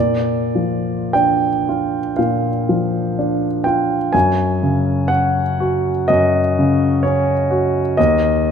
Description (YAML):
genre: classical, romantic nocturne for solo piano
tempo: 47-65 BPM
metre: 4/4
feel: rubato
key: unclear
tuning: A4 = 441 Hz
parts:
  - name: warm concert grand piano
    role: solo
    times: 0.0-8.5 s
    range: Eb2 to Ab5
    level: -15 LUFS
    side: equal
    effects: none
room: moderate recital hall reverb, RT60 1.8 s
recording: none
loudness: -15 LUFS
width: side -7 dB against mid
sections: 0.0-8.5 A section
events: none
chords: 0.0 Bb; 4.1 Gb5; 8.0 N.C.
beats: 1.15 2.19 3.18 | 4.14 5.10 6.09 7.04 | 7.98